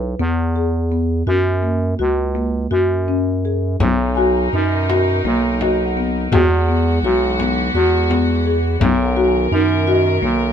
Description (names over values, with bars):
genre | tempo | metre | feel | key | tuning
contemporary instrumental, chamber music in an uneven meter | 168 BPM (eighths) | 7/8 | straight | unclear | A4 = 441 Hz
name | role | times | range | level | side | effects
marimba with soft mallets | arpeggios | 0.0-10.4 s | A#3 to G#4 | -19 LUFS | left 2 dB | none
growling FM bass | bass | 0.0-10.5 s | B1 to F#2 | -18 LUFS | right 1 dB | none
rich chamber string section | sustained chords | 3.8-10.5 s | B2 to A#4 | -24 LUFS | equal | none
frame drum | percussion | 3.8-10.4 s | none | -21 LUFS | left 3 dB | none
celesta | texture | 4.2-10.5 s | C#5 to G#5 | -28 LUFS | left 5 dB | none
room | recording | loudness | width
little or no reverb | none | -15 LUFS | side -8 dB against mid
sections
0.0-3.8 A section; 3.8-10.5 B section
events
none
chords
0.0 E; 1.3 F#; 3.8 Bmaj7; 6.3 Eadd9; 8.8 Bmaj7